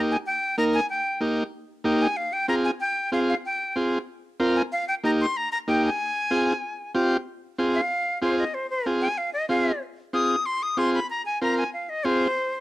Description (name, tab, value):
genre	latin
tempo	188 BPM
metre	4/4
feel	straight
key	F minor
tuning	A4 = 440 Hz
part	overdriven combo organ	accompaniment	0.0-12.3 s	Bb3 to Bb4	-24 LUFS	equal	cassette tape, plate reverb
part	breathy bright jazz flute	melody	0.1-12.6 s	C5 to Eb6	-25 LUFS	left 1 dB	cassette tape, plate reverb
room	moderate booth ambience, RT60 0.3 s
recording	home recording on cassette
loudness	-22 LUFS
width	side -16 dB against mid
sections	0.0-7.3 A section; 7.3-12.6 B section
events	flute solo 7.3-12.6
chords	0.0 Eb; 2.2 Fmadd9; 4.7 Eb; 6.0 Fm